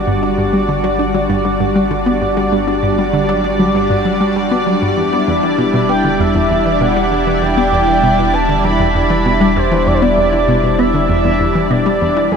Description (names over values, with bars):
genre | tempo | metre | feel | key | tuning
ambient, sequencer-driven space music | 98 BPM | 4/4 | straight | unclear | A4 = 440 Hz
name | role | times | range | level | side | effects
lush unison pad | sustained chords | 0.0-12.4 s | F3 to D5 | -15 LUFS | equal | chorus, shimmer reverb
round analog bass | bass | 0.0-12.4 s | E1 to G1 | -23 LUFS | equal | none
analog pluck | riff | 0.1-12.4 s | E2 to D4 | -17 LUFS | equal | chorus, shimmer reverb, tape echo
expressive portamento lead | melody | 5.9-12.4 s | A4 to B5 | -17 LUFS | right 1 dB | chorus, shimmer reverb, tape echo
room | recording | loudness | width
wet huge ambient reverb, RT60 8.5 s | none | -12 LUFS | side -6 dB against mid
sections
0.0-12.4 A section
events
fade-in on analog synth bass 0.0-12.4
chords
0.0 Gmaj7(no3); 5.0 Em7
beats
| 0.07 0.69 1.30 1.91 | 2.52 3.14 3.75 4.36 | 4.97 5.58 6.20 6.81 | 7.42 8.03 8.65 9.26 | 9.87 10.48 11.10 11.71 | 12.32